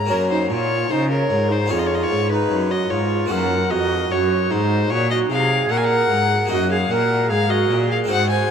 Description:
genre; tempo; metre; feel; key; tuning
classical, baroque-style sonata movement with continuo; 75 BPM; 4/4; straight; unclear; A4 = 440 Hz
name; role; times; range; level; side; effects
rich violin; melody; 0.0-8.5 s; Bb4 to Bb5; -22 LUFS; left 5 dB; none
harpsichord; accompaniment; 0.0-8.5 s; F2 to Ab4; -25 LUFS; left 2 dB; none
rich cello; bass; 0.0-8.5 s; F2 to Db3; -23 LUFS; right 1 dB; none
baroque flute; second line; 0.1-8.5 s; Eb4 to Db5; -21 LUFS; right 3 dB; none
room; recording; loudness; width
wet cathedral reverb, RT60 5.4 s; in a vast, echoing space; -17 LUFS; side -7 dB against mid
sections
0.0-8.5 A section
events
none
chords
0.1 Gb; 1.7 Db7/F; 3.3 Gb; 6.5 Ebm/Gb

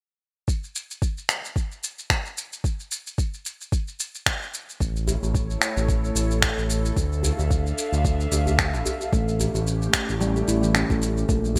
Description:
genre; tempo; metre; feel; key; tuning
organic downtempo; 111 BPM; 4/4; swing 56% on 16ths; unclear; A4 = 440 Hz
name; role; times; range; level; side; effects
electronic kick drum; drums; 0.5-11.6 s; none; -27 LUFS; equal; overdrive
electronic shaker and finger snaps; drums; 0.5-11.6 s; none; -28 LUFS; equal; gated reverb
airy breathy pad; sustained chords; 5.0-11.6 s; G3 to F5; -32 LUFS; equal; chorus, vintage 12-bit sampler grit, sidechain pumping
smooth synth bass; bass; 4.8-11.6 s; A1 to D2; -27 LUFS; equal; tube saturation, sidechain pumping
djembe; percussion; 5.1-11.6 s; none; -35 LUFS; equal; none
handpan; arpeggios; 9.1-11.4 s; E3 to E4; -29 LUFS; equal; digital delay
room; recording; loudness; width
light reverb, digital ambience; bright 1980s-style digital production; -25 LUFS; mono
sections
0.5-9.1 A section; 9.1-11.6 B section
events
none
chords
0.5 N.C.; 4.8 A; 7.0 Dm; 9.1 A7

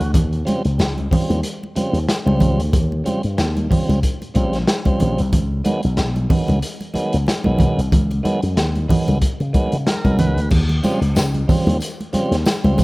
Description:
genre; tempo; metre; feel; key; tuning
funk; 92 BPM; 4/4; swing 56% on 16ths; Eb mixolydian; A4 = 439 Hz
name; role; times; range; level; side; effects
tonewheel organ; stabs; 0.0-12.8 s; Db3 to Cb5; -24 LUFS; right 1 dB; overdrive
slap bass with an envelope filter; bass; 0.0-12.8 s; Bb1 to Db3; -19 LUFS; equal; none
crunchy breakbeat drum kit; drums; 0.0-12.8 s; crash cymbal, hi-hat, kick drum, snare drum; -21 LUFS; equal; none
congas; percussion; 0.2-12.8 s; none; -22 LUFS; right 2 dB; none
tambourine; percussion; 10.5-12.8 s; none; -37 LUFS; left 4 dB; none
room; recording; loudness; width
light reverb, studio reverb; rough home demo mix; -16 LUFS; side -21 dB against mid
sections
0.0-10.5 A section; 10.5-12.8 B section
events
tonewheel organ fill 9.5-10.5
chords
0.1 Eb13; 5.3 Db9sus4; 10.5 Eb13

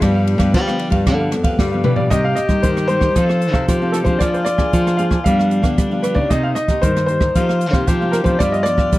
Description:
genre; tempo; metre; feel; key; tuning
samba and choro; 114 BPM; 4/4; straight; C minor; A4 = 438 Hz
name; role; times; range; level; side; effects
breathy tenor saxophone; second line; 0.0-9.0 s; F3 to A4; -25 LUFS; left 4 dB; none
cavaquinho; accompaniment; 0.0-9.0 s; D4 to Ab5; -28 LUFS; right 2 dB; none
nylon-string guitar; accompaniment; 0.0-9.0 s; G2 to A4; -24 LUFS; left 2 dB; none
nylon-string guitar; bass; 0.0-9.0 s; F2 to G3; -19 LUFS; right 1 dB; none
open jazz drum kit; drums; 0.0-9.0 s; hi-hat, kick drum, ride cymbal, rim click, snare drum, toms; -19 LUFS; equal; none
warm concert grand piano; melody; 1.8-9.0 s; A4 to F5; -20 LUFS; equal; none
room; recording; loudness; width
little or no reverb; dry, close 1970s-style studio recording; -14 LUFS; side -17 dB against mid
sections
0.0-2.1 A section; 2.1-9.0 B section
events
drum fill 1.6-2.1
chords
0.0 G7; 2.1 Cm7; 3.2 F7; 4.2 Bb7/F; 5.3 G7; 6.3 Cm7; 7.4 F9sus4; 8.4 G7

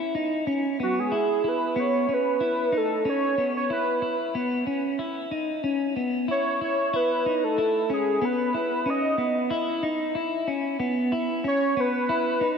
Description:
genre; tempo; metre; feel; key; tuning
dream pop; 93 BPM; 4/4; straight; unclear; A4 = 441 Hz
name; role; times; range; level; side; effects
clean electric guitar; arpeggios; 0.0-12.6 s; B3 to E4; -26 LUFS; left 1 dB; analog chorus, tape echo
warm velvety synth lead; melody; 0.8-12.6 s; F#4 to D#5; -25 LUFS; right 1 dB; chorus, tape echo
room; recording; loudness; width
wet lush hall reverb, RT60 2.7 s; dark, warm production; -23 LUFS; side -6 dB against mid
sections
0.0-6.9 A section; 6.9-12.6 B section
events
none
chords
0.0 Badd9; 5.6 Bsus24; 6.9 Badd9

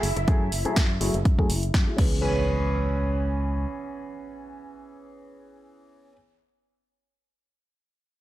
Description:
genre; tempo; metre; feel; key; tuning
filtered disco house; 123 BPM; 4/4; swing 54% on 16ths; C# minor; A4 = 442 Hz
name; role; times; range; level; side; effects
phased string machine; sustained chords; 0.0-2.0 s; E4 to E5; -35 LUFS; equal; ensemble chorus, phaser, sidechain pumping, low-pass filter
fingered electric bass; bass; 0.0-3.7 s; F#1 to F#2; -27 LUFS; equal; tube saturation, sidechain pumping, low-pass filter
punchy analog drum machine; drums; 0.0-2.1 s; crash cymbal, hi-hat, snare drum; -32 LUFS; equal; sidechain pumping on hats, sidechain pumping on perc, sidechain pumping on cymbals
impact; sound effects; 2.0-6.2 s; none; -36 LUFS; equal; none
direct-recorded clean electric guitar; riff; 0.2-6.2 s; C#4 to B4; -32 LUFS; right 3 dB; sidechain pumping, low-pass filter
clear grand piano; accompaniment; 0.3-6.1 s; E3 to G#4; -32 LUFS; left 2 dB; phaser, sidechain pumping, low-pass filter
electronic kick drum; drums; 0.3-2.1 s; none; -22 LUFS; equal; overdrive
room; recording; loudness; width
light reverb; none; -22 LUFS; side -15 dB against mid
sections
0.0-2.2 A section; 2.2-6.1 B section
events
impact 0.0; filter sweep 0.0-2.2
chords
0.0 F#m9; 2.0 C#m7

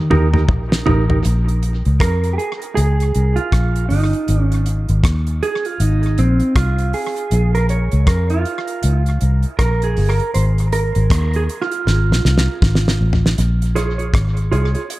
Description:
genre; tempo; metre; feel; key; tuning
roots reggae; 79 BPM; 4/4; swing 60% on 16ths; Bb dorian; A4 = 441 Hz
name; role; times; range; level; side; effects
vintage muted fingered electric bass; bass; 0.0-14.7 s; G1 to F2; -16 LUFS; equal; none
mellow electric guitar; accompaniment; 0.1-14.8 s; C4 to Db5; -22 LUFS; right 4 dB; dub echo
damped 70s drum kit; drums; 0.1-15.0 s; hi-hat, kick drum, rim click, snare drum, toms; -20 LUFS; equal; tape echo
room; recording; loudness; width
studio reverb; echo-heavy mix; -14 LUFS; side -18 dB against mid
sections
0.0-1.2 A section; 1.2-13.4 B section; 13.4-15.0 C section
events
drum fill 0.0-1.2, 11.9-13.4; clean electric guitar solo 1.2-13.4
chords
0.0 Eb; 1.2 Bbm; 4.3 Ab; 7.3 Bbm; 10.3 Ab5; 13.4 Bbm7

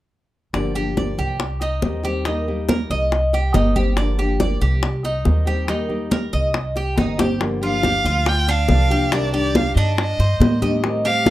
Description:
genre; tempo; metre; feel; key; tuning
latin, Cuban son and guajira; 140 BPM; 4/4; straight; G minor; A4 = 440 Hz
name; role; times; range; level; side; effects
nylon-string guitar; accompaniment; 0.5-11.3 s; C3 to G4; -25 LUFS; left 2 dB; none
Cuban tres; arpeggios; 0.5-11.3 s; D4 to Eb5; -25 LUFS; right 2 dB; none
upright bass; bass; 0.5-11.3 s; G1 to A2; -21 LUFS; equal; none
bongos; percussion; 0.5-11.3 s; none; -24 LUFS; left 4 dB; none
congas; percussion; 0.5-11.3 s; none; -24 LUFS; right 1 dB; none
warm violin; melody; 7.7-11.3 s; D5 to G5; -21 LUFS; right 1 dB; none
room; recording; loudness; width
moderate studio reverb, RT60 0.6 s; rough home demo mix; -17 LUFS; side -15 dB against mid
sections
0.5-7.4 A section; 7.4-11.3 B section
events
drum fill 7.2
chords
0.5 Gm7; 1.4 Cm; 2.3 Eb; 3.1 Cm; 4.0 Gm7; 4.8 Cm; 5.7 Eb; 6.5 Cm; 7.4 Gm7; 9.1 Cmadd9

